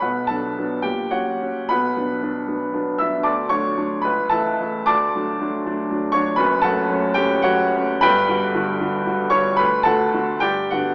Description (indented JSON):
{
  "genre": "classical, romantic character piece for solo piano",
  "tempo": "64-82 BPM (dotted quarters)",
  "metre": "6/8",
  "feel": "rubato",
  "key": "B minor",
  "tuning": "A4 = 440 Hz",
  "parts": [
    { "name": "clear baby grand piano", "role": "solo", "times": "0.0-10.9 s", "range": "F#1 to E6", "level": "-20 LUFS", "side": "equal", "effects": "none" }
  ],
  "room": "wet scoring stage reverb, RT60 1.6 s",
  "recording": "recorded in a church or concert hall, AM radio sound",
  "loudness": "-20 LUFS",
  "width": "mono",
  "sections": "0.0-10.9 A section",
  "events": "none",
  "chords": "0.0 Bm; 0.8 F#/A#; 1.7 Bm; 3.3 D; 4.0 A/C#; 4.9 D; 6.4 F#m; 8.0 Gmaj7; 9.6 D; 10.4 G",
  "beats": "| 0.01 0.84 | 1.71 2.49 | 3.27 4.05 | 4.89 5.64 | 6.38 7.16 | 8.03 8.82 | 9.59 10.42"
}